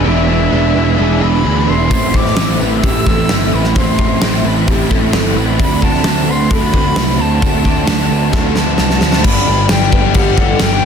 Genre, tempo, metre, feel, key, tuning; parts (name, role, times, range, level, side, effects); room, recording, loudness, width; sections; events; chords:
rock, shoegaze and dream pop; 131 BPM; 4/4; straight; G major; A4 = 440 Hz
bright reedy silver concert flute; melody; 0.0-10.8 s; E5 to E6; -20 LUFS; equal; tape echo
electric guitar through a small old amp; arpeggios; 0.0-10.8 s; G4 to D5; -24 LUFS; left 1 dB; analog chorus, tape echo
biting overdriven guitar; riff; 0.0-10.8 s; E2 to G4; -20 LUFS; left 14 dB; ensemble chorus
overdriven semi-hollow guitar; riff; 0.0-9.2 s; A2 to G#4; -18 LUFS; right 12 dB; reverse reverb
fuzz picked electric bass; bass; 0.0-10.8 s; E1 to D2; -16 LUFS; left 1 dB; overdrive
gated 80s drum kit; drums; 1.9-10.7 s; crash cymbal, hi-hat, kick drum, snare drum; -15 LUFS; equal; soft clipping on snare
tambourine; percussion; 1.9-10.7 s; -35 LUFS; right 15 dB
small room ambience; dense, heavily limited modern master; -11 LUFS; side -7 dB against mid
0.0-9.2 A section; 9.2-10.8 B section
drum fill 8.3-9.2
0.0 E7; 1.9 Amadd9; 5.6 D7; 9.2 G